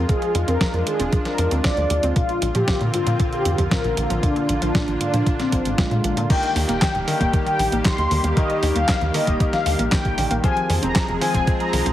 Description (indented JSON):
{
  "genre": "italo disco",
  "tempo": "116 BPM",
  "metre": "4/4",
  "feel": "straight",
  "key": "Eb major",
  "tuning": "A4 = 439 Hz",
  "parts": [
    { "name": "lush unison pad", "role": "sustained chords", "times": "0.0-11.9 s", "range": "D3 to Ab4", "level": "-26 LUFS", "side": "equal", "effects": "chorus" },
    { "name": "analog pluck", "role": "arpeggios", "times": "0.0-11.9 s", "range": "Ab2 to C4", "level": "-29 LUFS", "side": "right 1 dB", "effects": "chorus, ping-pong delay" },
    { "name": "tight sequencer bass", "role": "bass", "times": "0.0-11.9 s", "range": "Eb1 to Bb2", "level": "-23 LUFS", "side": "equal", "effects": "none" },
    { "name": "mellow synth brass", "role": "melody", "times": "0.1-11.9 s", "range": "Ab3 to C6", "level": "-24 LUFS", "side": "left 1 dB", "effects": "chorus, ping-pong delay" },
    { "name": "clean 12-bit digital drum machine", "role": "drums", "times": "0.1-11.9 s", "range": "crash cymbal, handclaps, hi-hat, snare drum", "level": "-26 LUFS", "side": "equal", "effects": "none" },
    { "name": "electronic kick drum", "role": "drums", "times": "0.1-11.6 s", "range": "none", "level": "-22 LUFS", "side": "equal", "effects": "none" },
    { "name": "clear grand piano", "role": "stabs", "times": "6.3-11.9 s", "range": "Eb3 to C5", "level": "-28 LUFS", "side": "left 4 dB", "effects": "none" }
  ],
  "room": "light reverb, digital ambience",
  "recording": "heavily compressed radio sound, multiband compression, vinyl crackle",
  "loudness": "-18 LUFS",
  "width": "side -12 dB against mid",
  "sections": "0.0-6.3 A section; 6.3-11.9 B section",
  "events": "none",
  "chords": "0.0 Fm; 2.2 Bbadd9; 6.3 Eb; 10.4 Fm"
}